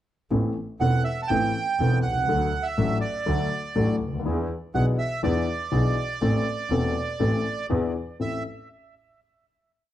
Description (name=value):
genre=tango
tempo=122 BPM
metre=4/4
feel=rubato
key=A dorian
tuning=A4 = 442 Hz
part: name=warm concert grand piano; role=accompaniment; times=0.3-8.4 s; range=E1 to A4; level=-26 LUFS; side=left 2 dB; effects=none
part: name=clear double bass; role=bass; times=0.3-8.4 s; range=E1 to E2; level=-27 LUFS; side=right 1 dB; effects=none
part: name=bandoneon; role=melody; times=0.8-8.4 s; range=D5 to A5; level=-28 LUFS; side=right 4 dB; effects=analog delay
room=moderate large studio reverb, RT60 0.9 s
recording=none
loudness=-22 LUFS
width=side -12 dB against mid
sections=0.3-8.2 A section; 8.2-9.9 final chord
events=none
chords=0.3 Amadd9; 2.3 D; 4.3 E7; 6.2 Am; 7.7 E7; 8.2 Am